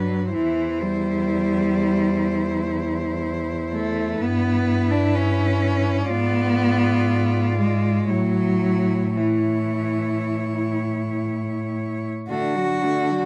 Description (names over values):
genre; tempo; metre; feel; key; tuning
classical, lyrical piece for cello ensemble; 54-64 BPM; 4/4; rubato; unclear; A4 = 440 Hz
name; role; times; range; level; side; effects
warm cello; melody; 0.0-13.3 s; F#4 to D5; -32 LUFS; equal; none
warm cello; second line; 0.0-13.3 s; D4 to F#4; -30 LUFS; equal; none
rich cello; accompaniment; 0.0-13.3 s; E3 to D4; -25 LUFS; equal; none
dark cello; bass; 0.0-13.3 s; E2 to D3; -27 LUFS; equal; none
room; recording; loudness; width
moderate studio reverb, RT60 0.7 s; dark, warm production; -22 LUFS; mono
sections
0.0-12.3 A section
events
none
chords
0.3 C/E; 4.2 Em/G; 6.1 G#dim7; 8.1 A; 12.3 D